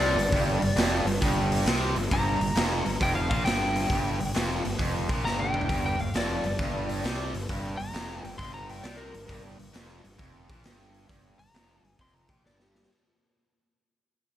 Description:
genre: blues rock power trio and southern rock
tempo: 134 BPM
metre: 4/4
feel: swing 67% on 8ths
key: G minor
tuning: A4 = 435 Hz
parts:
  - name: lightly driven lead guitar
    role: melody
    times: 0.0-12.9 s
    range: G4 to C6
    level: -32 LUFS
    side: left 2 dB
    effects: analog delay
  - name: distorted electric guitar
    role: riff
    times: 0.0-12.9 s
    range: F2 to C3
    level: -30 LUFS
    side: right 1 dB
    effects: overdrive
  - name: fuzz fingered electric bass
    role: bass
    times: 0.0-12.9 s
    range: F1 to C2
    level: -32 LUFS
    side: equal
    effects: overdrive
  - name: raw garage drum kit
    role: drums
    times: 0.2-12.9 s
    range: hi-hat, kick drum, snare drum, toms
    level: -29 LUFS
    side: equal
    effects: none
room: light reverb, small room reverb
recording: none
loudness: -24 LUFS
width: side -12 dB against mid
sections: 0.0-12.9 A section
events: fade-out 0.0-12.9; drum fill 5.2-5.7, 12.4-12.9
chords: 0.0 Gm

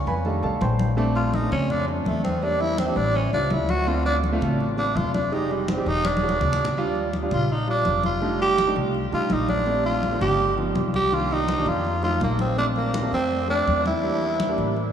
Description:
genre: Afro-Cuban jazz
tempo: 165 BPM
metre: 4/4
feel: straight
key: Bb major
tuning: A4 = 437 Hz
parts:
  - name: warm grand piano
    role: accompaniment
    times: 0.0-14.8 s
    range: Eb3 to C6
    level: -27 LUFS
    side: right 3 dB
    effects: none
  - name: upright bass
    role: bass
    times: 0.1-14.9 s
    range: E1 to E#2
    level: -27 LUFS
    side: left 1 dB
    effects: none
  - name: congas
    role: percussion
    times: 0.1-14.9 s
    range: none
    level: -29 LUFS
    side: left 1 dB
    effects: none
  - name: growling tenor saxophone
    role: melody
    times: 1.2-14.9 s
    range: F3 to G4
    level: -24 LUFS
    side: right 1 dB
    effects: tape echo
room: wet cathedral reverb, RT60 7.1 s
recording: in a vast, echoing space, studio ambience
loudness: -20 LUFS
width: side -8 dB against mid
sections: 1.0-12.6 A section; 12.6-14.9 B section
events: tenor saxophone solo 1.0-12.6; drum fill 6.0-6.8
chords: 0.2 F13; 1.0 Bbmaj9; 2.4 Em7b5; 3.1 A7b13; 3.9 Dm7; 5.3 Fm7; 6.0 E13; 6.8 Ebmaj9; 8.2 F13; 9.7 Bbmaj9; 10.4 G7b13; 11.1 Cm7; 11.9 F7b9; 12.6 Bbmaj9; 14.0 Em7b5

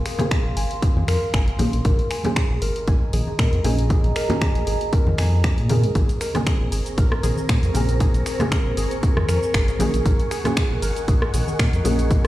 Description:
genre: deep house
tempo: 117 BPM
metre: 4/4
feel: swing 55% on 16ths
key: unclear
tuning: A4 = 440 Hz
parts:
  - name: deep mellow chord stab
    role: stabs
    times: 0.0-12.3 s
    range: Db3 to Ab4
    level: -28 LUFS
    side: equal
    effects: chorus, sidechain pumping, tape echo
  - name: warbly tape-like pad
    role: texture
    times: 0.0-12.3 s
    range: Ab4 to C6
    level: -31 LUFS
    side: right 1 dB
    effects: chorus, built-in reverb, sidechain pumping
  - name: warbly dusty pluck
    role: arpeggios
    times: 0.1-12.2 s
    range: Ab4 to Ab5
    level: -30 LUFS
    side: equal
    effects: lush chorus, sidechain pumping, dub echo
  - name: punchy analog drum machine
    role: drums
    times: 0.1-12.3 s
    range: finger snaps, hi-hat, rim click, shaker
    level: -29 LUFS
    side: equal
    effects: overdrive
  - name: congas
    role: percussion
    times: 0.2-12.2 s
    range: none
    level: -29 LUFS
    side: left 1 dB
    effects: none
  - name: electronic kick drum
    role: drums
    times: 0.3-12.2 s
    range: none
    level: -20 LUFS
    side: equal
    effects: none
  - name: round analog bass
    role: bass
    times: 0.5-12.3 s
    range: Ab1 to Bb2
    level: -22 LUFS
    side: equal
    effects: sidechain pumping
  - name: soft string machine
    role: sustained chords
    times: 6.4-12.3 s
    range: C4 to Db6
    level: -31 LUFS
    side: left 1 dB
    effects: ensemble chorus, sidechain pumping
room: light reverb, digital ambience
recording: played on a big sound system in a bare room, large studio reverb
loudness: -18 LUFS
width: side -15 dB against mid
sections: 0.0-12.3 A section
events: none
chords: 0.0 Bbm9; 1.6 Ab9sus4; 6.0 Bbm9; 9.8 Ab9sus4

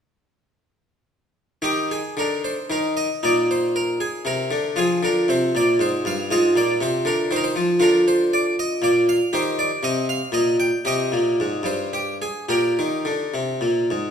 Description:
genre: classical, baroque-style suite movement for harpsichord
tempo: 102-121 BPM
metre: 3/4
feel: rubato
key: Eb major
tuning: A4 = 440 Hz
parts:
  - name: harpsichord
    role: solo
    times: 1.6-14.1 s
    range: G2 to G5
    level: -19 LUFS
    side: equal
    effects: none
room: wet recital hall reverb, RT60 1.5 s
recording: recorded in a church or concert hall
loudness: -19 LUFS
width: side -8 dB against mid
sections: 1.6-14.1 A section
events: none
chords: 1.6 Abmaj9#11; 3.2 Eb5/Bb; 4.8 Fm; 6.3 Fm/Ab; 7.8 Bb/D; 9.3 Eb; 10.8 Cm; 12.5 Eb/Bb

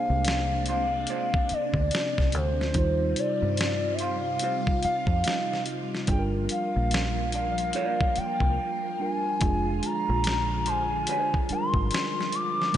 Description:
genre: R&B, neo-soul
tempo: 72 BPM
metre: 4/4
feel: swing 61% on 16ths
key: F dorian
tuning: A4 = 443 Hz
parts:
  - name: hollow clarinet-like synth lead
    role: melody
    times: 0.0-12.8 s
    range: C5 to D6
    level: -28 LUFS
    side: left 1 dB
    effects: chorus, slapback echo
  - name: mellow tine electric piano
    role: accompaniment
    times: 0.0-12.8 s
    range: G3 to Eb5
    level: -33 LUFS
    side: right 4 dB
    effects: slapback echo
  - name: phased string machine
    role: sustained chords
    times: 0.0-12.8 s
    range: C3 to F4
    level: -35 LUFS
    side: left 1 dB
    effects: ensemble chorus, phaser
  - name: deep dub fingered electric bass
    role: bass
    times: 0.1-12.8 s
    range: F1 to G2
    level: -28 LUFS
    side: equal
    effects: none
  - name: dusty soul sampler-style drum kit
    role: drums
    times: 0.2-12.8 s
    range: hi-hat, kick drum, snare drum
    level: -29 LUFS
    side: equal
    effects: none
  - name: hollow-body jazz guitar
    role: second line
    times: 0.7-11.3 s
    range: Ab3 to D5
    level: -36 LUFS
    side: right 6 dB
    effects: wah, slapback echo
room: light reverb, digital ambience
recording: nothing above 10.8 kHz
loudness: -24 LUFS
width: side -11 dB against mid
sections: 0.0-12.8 A section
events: break 8.6-9.4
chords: 0.0 Bb9; 2.7 Eb69; 6.1 Gm7; 9.4 Fm69

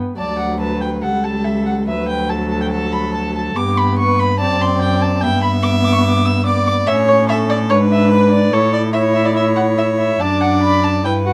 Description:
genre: quick classical-period movement for string quartet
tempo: 143 BPM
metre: 4/4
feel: rubato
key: D major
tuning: A4 = 440 Hz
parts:
  - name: dark viola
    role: accompaniment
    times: 0.0-11.3 s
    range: F#3 to F#4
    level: -24 LUFS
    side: equal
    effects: none
  - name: rich cello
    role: bass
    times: 0.0-11.3 s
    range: C#2 to A2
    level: -20 LUFS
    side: equal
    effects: none
  - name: dark violin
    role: melody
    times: 0.2-11.3 s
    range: B4 to E6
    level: -22 LUFS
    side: equal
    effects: none
  - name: rich violin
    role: second line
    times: 0.2-11.3 s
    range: G4 to E5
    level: -23 LUFS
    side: equal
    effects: none
room: light reverb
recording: none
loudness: -16 LUFS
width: mono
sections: 0.2-11.3 A section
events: none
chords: 0.2 D; 1.0 A7/C#; 1.9 D; 3.6 G; 4.4 D7/F#; 5.2 G; 6.9 A; 7.7 G#dim; 8.5 A; 10.2 D/F#

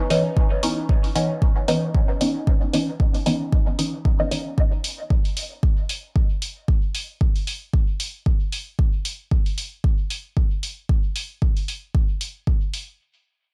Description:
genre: dub techno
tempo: 114 BPM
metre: 4/4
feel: swing 56% on 16ths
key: C# minor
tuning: A4 = 441 Hz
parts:
  - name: filtered dub chord stab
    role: stabs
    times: 0.0-4.8 s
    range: E3 to D#4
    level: -26 LUFS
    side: equal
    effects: phaser, cassette tape, dub echo
  - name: electronic hi-hat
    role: drums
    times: 0.1-12.9 s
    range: none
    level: -31 LUFS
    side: equal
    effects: none
  - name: electronic kick drum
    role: drums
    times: 0.4-12.6 s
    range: none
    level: -22 LUFS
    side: equal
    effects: none
room: light reverb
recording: none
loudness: -23 LUFS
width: mono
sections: 0.0-13.0 A section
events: filter sweep on synth stab 0.0-4.6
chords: 0.0 C#m9

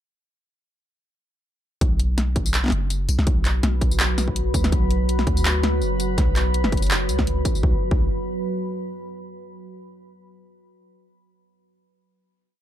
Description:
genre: half-time drum and bass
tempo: 165 BPM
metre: 4/4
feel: swing 54% on 16ths, half-time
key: B minor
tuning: A4 = 440 Hz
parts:
  - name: deep dark ambient pad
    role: sustained chords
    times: 3.3-9.0 s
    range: F#3 to B5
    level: -27 LUFS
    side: equal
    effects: chorus, built-in reverb, sidechain pumping
  - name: long sustained 808-style bass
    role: bass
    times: 1.8-8.1 s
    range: F#1 to D2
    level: -22 LUFS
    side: equal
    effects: none
  - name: drum and bass drum kit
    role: drums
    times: 1.8-7.6 s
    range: handclaps, hi-hat, snare drum, tambourine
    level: -25 LUFS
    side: equal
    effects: overdrive
  - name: electronic kick drum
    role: drums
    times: 1.8-8.0 s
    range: none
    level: -23 LUFS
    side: equal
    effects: none
room: little or no reverb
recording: dark, warm production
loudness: -19 LUFS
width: side -11 dB against mid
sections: 1.8-7.6 drop; 7.6-9.1 final chord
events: drop 1.8-7.6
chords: 1.8 B5

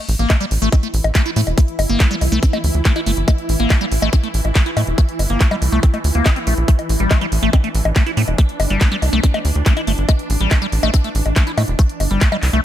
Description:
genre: psychedelic trance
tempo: 141 BPM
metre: 4/4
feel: straight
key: A phrygian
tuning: A4 = 440 Hz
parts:
  - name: swarming drone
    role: sustained chords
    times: 0.5-12.6 s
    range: E3 to E4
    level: -26 LUFS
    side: right 1 dB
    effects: built-in reverb, sidechain pumping
  - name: tight sequencer bass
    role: bass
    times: 0.1-12.6 s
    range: E1 to A2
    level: -17 LUFS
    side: equal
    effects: tube saturation
  - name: drum and bass drum kit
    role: drums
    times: 0.1-12.6 s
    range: bongos, handclaps, hi-hat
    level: -23 LUFS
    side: left 2 dB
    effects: overdrive
  - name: liquid acid bass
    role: riff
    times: 0.2-12.6 s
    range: G3 to E4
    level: -22 LUFS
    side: moving between left 4 dB and right 3 dB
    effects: phaser, auto-pan, sidechain pumping, tape echo
  - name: electronic kick drum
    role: drums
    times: 0.3-12.3 s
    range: none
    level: -13 LUFS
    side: equal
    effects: none
room: digital ambience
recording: none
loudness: -14 LUFS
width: side -12 dB against mid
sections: 0.0-12.6 A section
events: none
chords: 0.0 A5

